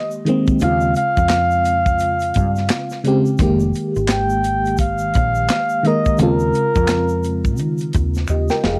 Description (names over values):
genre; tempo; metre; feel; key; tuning
R&B, neo-soul; 86 BPM; 4/4; swing 60% on 16ths; unclear; A4 = 440 Hz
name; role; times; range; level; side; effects
breathy flugelhorn; melody; 0.0-7.6 s; Bb4 to G5; -22 LUFS; equal; none
FM electric piano with tremolo; accompaniment; 0.0-8.8 s; Db3 to G5; -22 LUFS; equal; cassette tape
tube shaker and finger snaps; percussion; 0.1-8.6 s; none; -38 LUFS; equal; none
tight funk drum kit; drums; 0.3-8.8 s; handclaps, hi-hat, kick drum, snare drum; -23 LUFS; equal; none
woody fretless electric bass; bass; 0.6-8.8 s; F1 to Eb3; -24 LUFS; equal; none
room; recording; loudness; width
moderate booth ambience, RT60 0.2 s; home recording on cassette; -18 LUFS; mono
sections
0.0-8.8 A section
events
drum fill 8.3-8.8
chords
0.0 Fm11 (rootless); 0.6 Eb9sus4 (rootless); 3.4 Fm11; 6.2 Eb13sus4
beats
| 0.61 1.30 2.00 2.70 | 3.40 4.09 4.79 5.49 | 6.19 6.88 7.58 8.28